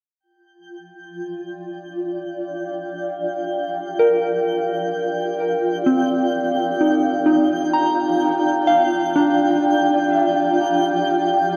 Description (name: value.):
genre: ambient.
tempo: 64 BPM.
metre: 3/4.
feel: straight.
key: Eb major.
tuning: A4 = 440 Hz.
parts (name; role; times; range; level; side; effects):
granular cloud pad; sustained chords; 0.7-11.6 s; F4 to G5; -24 LUFS; equal; built-in reverb.
twinkling granular texture; texture; 0.7-11.6 s; G5 to G6; -34 LUFS; equal; built-in reverb.
soft synth bell; arpeggios; 4.0-11.6 s; C4 to Bb5; -21 LUFS; equal; chorus, diffuse ambient delay.
room: wet cathedral reverb, RT60 5.8 s.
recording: worn, warbling old tape, cassette tape, warbly pitch drift.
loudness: -20 LUFS.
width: mono.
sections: 0.2-11.6 A section.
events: fade-in on synth texture 0.2-11.6.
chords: 0.2 Ebmaj9.